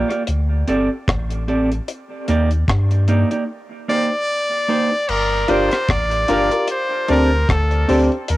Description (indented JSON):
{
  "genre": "dub reggae",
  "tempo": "75 BPM",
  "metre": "4/4",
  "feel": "swing 57% on 16ths",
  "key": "G minor",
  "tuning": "A4 = 441 Hz",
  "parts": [
    { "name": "clean electric guitar", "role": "accompaniment", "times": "0.0-8.1 s", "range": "Bb3 to D5", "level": "-22 LUFS", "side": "right 2 dB", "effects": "low-pass filter, cassette tape, dub echo" },
    { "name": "warm sub bass", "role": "bass", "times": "0.0-8.4 s", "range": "G1 to G2", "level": "-19 LUFS", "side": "equal", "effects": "none" },
    { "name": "deep reggae drum kit", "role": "drums", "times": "0.1-8.4 s", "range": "crash cymbal, hi-hat, kick drum, rim click", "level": "-23 LUFS", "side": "left 1 dB", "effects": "cassette tape" },
    { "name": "brilliant trumpet", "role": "melody", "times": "3.9-8.4 s", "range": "A4 to D5", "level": "-19 LUFS", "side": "equal", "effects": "dub echo" },
    { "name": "dark grand piano", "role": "stabs", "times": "5.5-8.1 s", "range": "D4 to C5", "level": "-21 LUFS", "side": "left 3 dB", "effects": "low-pass filter, cassette tape, dub echo" }
  ],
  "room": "light reverb, small room reverb",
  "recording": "home recording on cassette",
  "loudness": "-16 LUFS",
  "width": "side -17 dB against mid",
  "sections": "0.0-5.1 A section; 5.1-8.4 B section",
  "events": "break 0.0-5.1",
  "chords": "0.3 D7sus4; 1.9 Ebmaj7; 3.5 Cm7; 5.1 Gm7; 6.7 D7sus4"
}